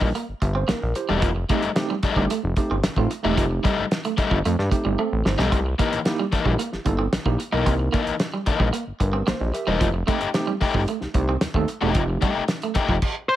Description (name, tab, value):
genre	funk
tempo	112 BPM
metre	4/4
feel	straight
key	unclear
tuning	A4 = 440 Hz
part	crunchy overdriven guitar	accompaniment	0.0-12.9 s	E3 to G4	-25 LUFS	left 5 dB	none
part	clean electric guitar	riff	0.0-13.0 s	F3 to C4	-28 LUFS	right 5 dB	none
part	fat analog bass	bass	0.0-13.0 s	E1 to G2	-24 LUFS	equal	none
part	warm soul drum kit	drums	0.0-13.1 s	crash cymbal, hi-hat, kick drum, snare drum	-24 LUFS	equal	none
part	tine electric piano	stabs	0.4-12.3 s	A3 to E5	-28 LUFS	right 4 dB	overdrive, medium stereo tremolo
part	octave-fuzz lead guitar	melody	13.3 s	C5	-17 LUFS	left 1 dB	distortion
room	light reverb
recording	none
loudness	-20 LUFS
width	side -13 dB against mid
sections	0.0-13.4 A section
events	tine electric piano fill 0.1-1.2, 8.7-9.8; drum fill 5.0-5.5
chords	0.0 C7#9; 1.2 F9; 5.5 C7#9; 9.8 F9